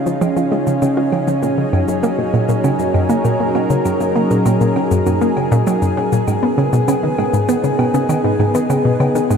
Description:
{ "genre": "ambient, sequencer-driven space music", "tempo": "99 BPM", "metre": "4/4", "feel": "straight", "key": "unclear", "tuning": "A4 = 440 Hz", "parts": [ { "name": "lush unison pad", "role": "sustained chords", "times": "0.0-9.4 s", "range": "C#3 to A#4", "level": "-17 LUFS", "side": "equal", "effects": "chorus" }, { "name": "analog pluck", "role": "riff", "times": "0.0-9.4 s", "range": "F#2 to E#4", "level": "-17 LUFS", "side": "equal", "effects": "chorus, tape echo" }, { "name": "cabasa and woodblock", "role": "percussion", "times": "0.1-9.4 s", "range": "none", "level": "-32 LUFS", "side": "left 2 dB", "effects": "tape echo" } ], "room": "wet huge ambient reverb, RT60 7.5 s", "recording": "dreamy mix soaked in reverb, faint mains hum", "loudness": "-14 LUFS", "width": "side -6 dB against mid", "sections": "0.0-9.4 A section", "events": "none", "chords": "0.0 C#add9; 1.4 F#6; 6.3 G#m" }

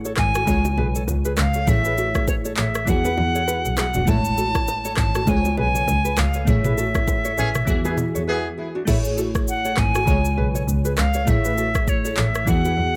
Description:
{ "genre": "afrobeats", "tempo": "100 BPM", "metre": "4/4", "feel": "swing 58% on 16ths", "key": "A major", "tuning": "A4 = 442 Hz", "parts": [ { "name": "glassy digital keys", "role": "accompaniment", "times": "0.0-13.0 s", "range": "C#3 to C#5", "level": "-29 LUFS", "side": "equal", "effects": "chorus" }, { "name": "rich double bass", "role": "bass", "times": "0.0-13.0 s", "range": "E1 to E2", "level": "-26 LUFS", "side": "equal", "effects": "none" }, { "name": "nylon-string guitar", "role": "riff", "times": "0.1-12.7 s", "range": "D4 to C#5", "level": "-32 LUFS", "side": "equal", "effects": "tape echo" }, { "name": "afro-pop drum kit", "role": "drums", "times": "0.1-12.8 s", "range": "crash cymbal, handclaps, kick drum, rim click, shaker, toms", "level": "-26 LUFS", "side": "equal", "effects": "none" }, { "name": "bright reedy silver concert flute", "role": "melody", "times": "0.2-13.0 s", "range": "C#5 to A5", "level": "-27 LUFS", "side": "equal", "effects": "none" }, { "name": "congas and bongos", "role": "percussion", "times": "0.5-8.1 s", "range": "none", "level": "-35 LUFS", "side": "equal", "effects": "none" }, { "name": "warm horn section", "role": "second line", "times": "7.4-8.5 s", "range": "E3 to G#4", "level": "-30 LUFS", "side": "equal", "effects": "tape echo" } ], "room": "studio reverb", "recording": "none", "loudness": "-21 LUFS", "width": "mono", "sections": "0.0-8.9 A section; 8.9-13.0 A section", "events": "band accent 6.5-8.9; break 8.3-8.9", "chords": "0.5 C#; 1.7 Amaj7; 2.9 Eadd9; 4.1 Amaj7; 5.3 C#; 6.5 Amaj7; 7.7 Eadd9; 8.9 Amaj7; 10.1 C#; 11.3 Amaj7" }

